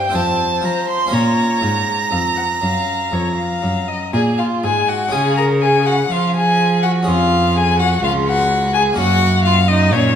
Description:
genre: classical, baroque-style sonata movement with continuo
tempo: 61 BPM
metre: 4/4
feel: straight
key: Bb minor, Db major from 5.1 s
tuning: A4 = 440 Hz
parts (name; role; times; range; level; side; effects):
- warm violin; melody; 0.0-10.2 s; C5 to Bb5; -19 LUFS; left 6 dB; none
- rich violin; second line; 0.0-10.2 s; Db4 to C6; -20 LUFS; right 4 dB; none
- harpsichord; accompaniment; 0.0-10.2 s; Db2 to C5; -23 LUFS; left 1 dB; none
- rich cello; bass; 0.0-10.2 s; Db2 to F3; -18 LUFS; right 1 dB; none
room: wet recital hall reverb, RT60 1.7 s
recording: minimal, uncompressed stereo recording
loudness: -14 LUFS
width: side -8 dB against mid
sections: 0.0-5.1 A section; 5.1-10.2 A section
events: none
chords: 0.1 F; 1.1 Bbm; 5.1 Db; 9.0 Gb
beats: 0.14 | 1.12 2.12 3.12 4.13 | 5.13 6.11 7.07 8.03 | 8.98 9.93

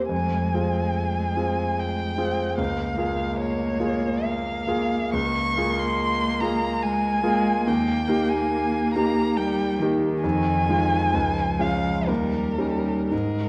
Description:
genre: classical, slow romantic movement for piano trio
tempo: 56-76 BPM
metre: 3/4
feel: rubato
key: unclear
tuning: A4 = 441 Hz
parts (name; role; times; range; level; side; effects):
- dark violin; melody; 0.0-13.5 s; Bb4 to Db6; -29 LUFS; equal; none
- rich cello; second line; 0.0-13.5 s; Eb3 to Bb3; -31 LUFS; equal; none
- clear grand piano; accompaniment; 0.0-13.5 s; Db2 to Bb4; -27 LUFS; equal; none
room: wet concert hall reverb, RT60 1.8 s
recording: worn, warbling old tape, cassette tape, warbly pitch drift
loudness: -24 LUFS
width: mono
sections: 0.0-13.5 A section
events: none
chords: 0.1 Fm; 2.6 Db6; 7.7 Eb; 10.2 Fm7; 11.1 Db; 12.1 Eb7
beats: | 0.10 0.96 1.79 | 2.59 3.40 4.23 | 5.15 6.00 6.83 | 7.68 8.52 9.38 | 10.24 11.15 12.09 | 13.11

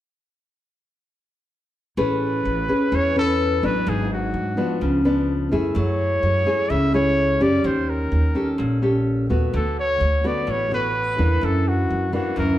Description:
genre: bossa nova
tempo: 127 BPM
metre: 4/4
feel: straight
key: A major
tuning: A4 = 440 Hz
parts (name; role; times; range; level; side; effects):
- warm trumpet; melody; 2.0-12.6 s; F#4 to E5; -23 LUFS; equal; none
- nylon-string guitar; accompaniment; 2.0-12.6 s; F#2 to B4; -22 LUFS; left 1 dB; none
- upright bass; bass; 2.0-12.6 s; G#1 to G#2; -24 LUFS; equal; none
room: wet large studio reverb, RT60 1.3 s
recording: band playing live in one room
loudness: -18 LUFS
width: side -13 dB against mid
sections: 2.0-12.6 A section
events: none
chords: 2.0 Amaj9; 3.9 G#m7b5; 4.8 C#7b9; 5.8 F#m9; 7.6 D#7#11; 9.5 D6; 11.4 F#7alt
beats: | 1.98 2.45 2.92 3.39 | 3.86 4.34 4.81 5.28 | 5.75 6.22 6.70 7.17 | 7.64 8.11 8.59 9.06 | 9.53 10.00 10.48 10.95 | 11.42 11.89 12.37

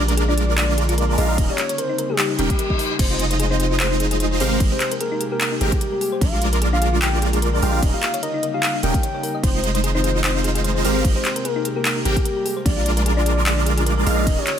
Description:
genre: future bass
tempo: 149 BPM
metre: 4/4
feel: swing 55% on 16ths, half-time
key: unclear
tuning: A4 = 440 Hz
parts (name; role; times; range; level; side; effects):
- airy breathy pad; sustained chords; 0.0-14.6 s; C3 to G4; -29 LUFS; equal; chorus, sidechain pumping
- thumb-piano-like synth pluck; arpeggios; 0.0-14.5 s; D4 to Eb5; -29 LUFS; left 5 dB; chorus, sidechain pumping, ping-pong delay
- supersaw chords; riff; 0.0-14.4 s; G3 to G5; -24 LUFS; right 2 dB; phaser, sidechain pumping
- long sustained 808-style bass; bass; 0.0-14.4 s; Eb1 to Bb1; -21 LUFS; equal; sidechain pumping
- trap drum kit; drums; 0.1-14.6 s; crash cymbal, handclaps, hi-hat; -25 LUFS; equal; studio reverb
- soft octave-layered synth lead; melody; 0.3-14.6 s; G4 to G5; -26 LUFS; left 1 dB; chorus, cassette tape, sidechain pumping, ping-pong delay
- electronic kick drum; drums; 1.4-14.4 s; none; -20 LUFS; equal; studio reverb
- reverse cymbal; sound effects; 2.3-3.0 s; none; -29 LUFS; left 4 dB; none
room: little or no reverb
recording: none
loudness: -17 LUFS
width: side -9 dB against mid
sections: 0.0-14.6 A section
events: reverse cymbal 2.3-3.0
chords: 0.0 Bb7; 1.4 Eb7; 3.0 Fm7; 4.4 Abmaj9; 6.2 Bb7; 7.8 Eb7; 9.4 Fm7; 10.8 Abmaj9; 12.7 Bb7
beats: 0.17 0.58 0.98 | 1.38 1.78 2.19 2.59 | 2.99 3.40 3.80 4.20 | 4.60 5.01 5.41 5.81 | 6.21 6.62 7.02 7.42 | 7.83 8.23 8.63 9.03 | 9.44 9.84 10.24 10.64 | 11.05 11.45 11.85 12.25 | 12.66 13.06 13.46 13.87 | 14.27

